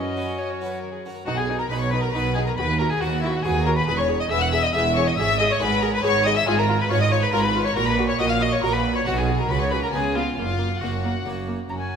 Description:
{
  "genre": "classical, baroque-style concerto movement with solo episodes",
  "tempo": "138 BPM",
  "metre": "3/4",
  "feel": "straight",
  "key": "B major, F# major from 6.5 s",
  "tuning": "A4 = 441 Hz",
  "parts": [
    { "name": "dark violin", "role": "melody", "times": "0.0-12.0 s", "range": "E4 to A#5", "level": "-25 LUFS", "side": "left 2 dB", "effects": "none" },
    { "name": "rich chamber violin section", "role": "melody", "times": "0.0-12.0 s", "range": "G#4 to F#6", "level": "-28 LUFS", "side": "left 4 dB", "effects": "none" },
    { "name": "rich chamber violin section", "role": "second line", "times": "0.0-12.0 s", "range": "E4 to F#5", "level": "-28 LUFS", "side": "left 5 dB", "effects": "none" },
    { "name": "dark chamber viola section", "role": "accompaniment", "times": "0.0-12.0 s", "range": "A#3 to G#4", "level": "-30 LUFS", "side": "right 1 dB", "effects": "none" },
    { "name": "harpsichord", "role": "accompaniment", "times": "0.0-12.0 s", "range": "D#2 to B4", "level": "-32 LUFS", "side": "right 1 dB", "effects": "none" },
    { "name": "rich chamber cello section", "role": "bass", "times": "0.0-12.0 s", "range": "D#2 to C#3", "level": "-27 LUFS", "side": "right 4 dB", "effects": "none" },
    { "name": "warm studio double bass section", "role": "bass", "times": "1.3-12.0 s", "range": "E1 to D#2", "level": "-28 LUFS", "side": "right 4 dB", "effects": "none" }
  ],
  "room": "moderate concert hall reverb, RT60 2.0 s",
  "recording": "minimal, uncompressed stereo recording",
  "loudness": "-19 LUFS",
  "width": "side -7 dB against mid",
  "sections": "0.0-1.3 A section; 1.3-11.7 B section",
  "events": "none",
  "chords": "0.0 F#sus4; 0.8 F#; 1.3 B; 2.6 B/D#; 3.9 E; 5.2 C#m13/G#; 6.5 C#7/G#; 7.8 F#/A#; 9.1 G#m7/B; 9.5 F#/C#; 9.9 C#7; 10.4 F#",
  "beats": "0.39 0.83 | 1.27 1.70 2.14 | 2.57 3.01 3.44 | 3.87 4.31 4.74 | 5.18 5.61 6.04 | 6.47 6.91 7.34 | 7.77 8.20 8.63 | 9.07 9.50 9.94 | 10.38 10.82 11.26 | 11.70"
}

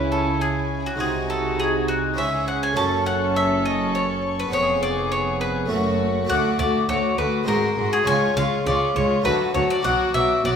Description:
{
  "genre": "classical, baroque-style concerto movement with solo episodes",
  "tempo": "102 BPM",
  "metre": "3/4",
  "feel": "straight",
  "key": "unclear",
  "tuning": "A4 = 440 Hz",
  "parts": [
    { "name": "bowl-back mandolin", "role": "melody", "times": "0.0-10.6 s", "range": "F#4 to A5", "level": "-24 LUFS", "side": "left 1 dB", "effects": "none" },
    { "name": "rich chamber violin section", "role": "melody", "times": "0.0-10.6 s", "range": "G#5 to D6", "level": "-34 LUFS", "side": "left 6 dB", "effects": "none" },
    { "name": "rich chamber violin section", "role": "second line", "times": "0.0-10.6 s", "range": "E4 to A4", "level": "-28 LUFS", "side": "left 2 dB", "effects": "none" },
    { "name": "harpsichord", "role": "accompaniment", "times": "0.0-10.6 s", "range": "D2 to G#4", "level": "-27 LUFS", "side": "left 1 dB", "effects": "none" },
    { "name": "warm chamber viola section", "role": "accompaniment", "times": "0.0-10.6 s", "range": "F#3 to D#4", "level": "-26 LUFS", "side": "right 1 dB", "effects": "none" },
    { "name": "dark chamber cello section", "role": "bass", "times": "0.0-10.5 s", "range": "D2 to D3", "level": "-30 LUFS", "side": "right 4 dB", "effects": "none" },
    { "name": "rich chamber double bass section", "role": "bass", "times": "0.0-10.5 s", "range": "E#1 to D2", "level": "-31 LUFS", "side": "right 3 dB", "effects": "none" }
  ],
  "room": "wet recital hall reverb, RT60 1.5 s",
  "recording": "minimal, uncompressed stereo recording",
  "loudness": "-19 LUFS",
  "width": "side -7 dB against mid",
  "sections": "0.0-10.6 A section",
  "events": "none",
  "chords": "0.0 C#m; 1.0 G#7/B#; 2.2 C#m; 2.8 F#m; 4.5 C#7/E#; 5.7 F#m; 6.3 D; 7.5 G#7; 8.1 C#; 9.3 D; 9.8 Bm",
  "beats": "0.41 | 1.01 1.60 2.19 | 2.77 3.36 3.95 | 4.53 5.12 5.71 | 6.30 6.89 7.48 | 8.07 8.66 9.26 | 9.85 10.44"
}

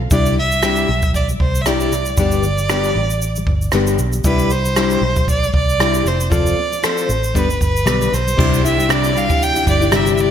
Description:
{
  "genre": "acoustic pop",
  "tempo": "116 BPM",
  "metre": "4/4",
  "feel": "swing 55% on 16ths",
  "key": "C major",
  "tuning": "A4 = 439 Hz",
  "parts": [
    { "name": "fingerpicked plugged-in steel-string acoustic guitar", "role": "accompaniment", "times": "0.0-10.3 s", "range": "G2 to B4", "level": "-20 LUFS", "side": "left 5 dB", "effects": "wide subtle chorus" },
    { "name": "vintage muted fingered electric bass", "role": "bass", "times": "0.0-10.3 s", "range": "F1 to C2", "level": "-20 LUFS", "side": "equal", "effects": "none" },
    { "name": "clear violin", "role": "melody", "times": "0.1-10.3 s", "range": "B4 to G5", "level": "-20 LUFS", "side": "right 2 dB", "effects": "ping-pong delay" },
    { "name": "jazz brush drum kit", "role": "drums", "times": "0.1-10.3 s", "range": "crash cymbal, kick drum, rim click, shaker", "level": "-20 LUFS", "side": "right 1 dB", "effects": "gated reverb" },
    { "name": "tonewheel organ", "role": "sustained chords", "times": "8.4-10.3 s", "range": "D3 to E4", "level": "-28 LUFS", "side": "right 1 dB", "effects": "fast rotary speaker" }
  ],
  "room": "moderate lush hall reverb, RT60 1.5 s, small room ambience",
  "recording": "bright 1980s-style digital production",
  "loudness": "-14 LUFS",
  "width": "side -9 dB against mid",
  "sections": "0.0-8.4 A section; 8.4-10.3 B section",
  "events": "none",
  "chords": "0.1 Cadd9; 2.2 G; 4.2 Cadd9; 6.1 F; 7.3 G; 8.4 Cadd9",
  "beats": "| 0.11 0.62 1.14 1.66 | 2.18 2.69 3.21 3.73 | 4.25 4.76 5.28 5.80 | 6.31 6.83 7.34 7.86 | 8.38 8.89 9.41 9.93"
}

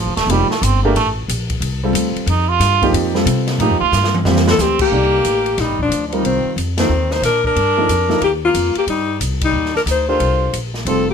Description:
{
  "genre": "modal jazz",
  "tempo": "182 BPM",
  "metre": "4/4",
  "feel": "swing 64% on 8ths",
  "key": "C dorian",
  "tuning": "A4 = 440 Hz",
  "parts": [
    { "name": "trombone with metal mute", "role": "second line", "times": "0.0-11.1 s", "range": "Eb3 to F4", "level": "-21 LUFS", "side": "right 7 dB", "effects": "none" },
    { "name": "upright bass", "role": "bass", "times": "0.0-11.1 s", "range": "D1 to C3", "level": "-20 LUFS", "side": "equal", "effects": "none" },
    { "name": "open jazz drum kit", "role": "drums", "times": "0.2-11.0 s", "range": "crash cymbal, hi-hat, kick drum, ride cymbal, snare drum, toms", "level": "-23 LUFS", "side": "equal", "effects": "none" },
    { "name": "warm baby grand piano", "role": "accompaniment", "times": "0.3-11.1 s", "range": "F3 to D5", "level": "-19 LUFS", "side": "right 1 dB", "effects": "none" },
    { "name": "breathy alto saxophone", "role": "melody", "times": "4.5-11.1 s", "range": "C4 to C5", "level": "-17 LUFS", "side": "left 5 dB", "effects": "none" }
  ],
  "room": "light reverb",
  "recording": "none",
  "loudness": "-14 LUFS",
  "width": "side -7 dB against mid",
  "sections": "0.0-4.9 A section; 4.9-11.1 B section",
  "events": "trombone solo 0.0-4.9; drum fill 3.9-4.6; band accent 6.7, 9.4",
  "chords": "0.0 F6; 4.9 Cm9; 10.2 F6",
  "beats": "0.30 0.63 | 0.96 1.29 1.62 1.95 | 2.28 2.61 2.94 3.27 | 3.60 3.93 4.26 4.59 | 4.92 5.25 5.58 5.91 | 6.24 6.57 6.90 7.23 | 7.56 7.89 8.22 8.55 | 8.88 9.21 9.54 9.87 | 10.20 10.53 10.86"
}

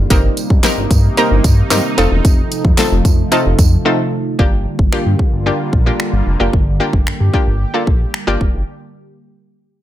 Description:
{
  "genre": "dance-pop",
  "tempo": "112 BPM",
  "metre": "4/4",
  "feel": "straight",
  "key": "G minor",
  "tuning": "A4 = 441 Hz",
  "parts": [
    { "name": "sweeping resonant pad", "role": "sustained chords", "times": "0.0-8.7 s", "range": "C3 to G4", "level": "-22 LUFS", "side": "right 1 dB", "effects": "chorus, sidechain pumping" },
    { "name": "chorused synth bass", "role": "bass", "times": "0.0-8.6 s", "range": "E1 to G2", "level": "-16 LUFS", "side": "equal", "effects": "sidechain pumping" },
    { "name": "analog pluck", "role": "accompaniment", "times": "0.1-8.5 s", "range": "A3 to Bb4", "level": "-17 LUFS", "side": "left 1 dB", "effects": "chorus, sidechain pumping" },
    { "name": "pop drum kit", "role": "drums", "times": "0.1-8.5 s", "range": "finger snaps, handclaps, hi-hat, kick drum, snare drum", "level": "-14 LUFS", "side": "equal", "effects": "none" },
    { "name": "tambourine", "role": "percussion", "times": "0.1-3.7 s", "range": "none", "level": "-28 LUFS", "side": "right 9 dB", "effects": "none" }
  ],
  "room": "digital ambience",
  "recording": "none",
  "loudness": "-12 LUFS",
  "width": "side -13 dB against mid",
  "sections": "0.0-4.4 A section; 4.4-8.7 B section",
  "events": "break 3.9-4.4",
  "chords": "0.1 Cm7/G; 2.0 F7; 4.4 Gm7",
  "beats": "| 0.10 0.64 1.18 1.71 | 2.25 2.78 3.32 3.85 | 4.39 4.92 5.46 6.00 | 6.53 7.07 7.60 8.14"
}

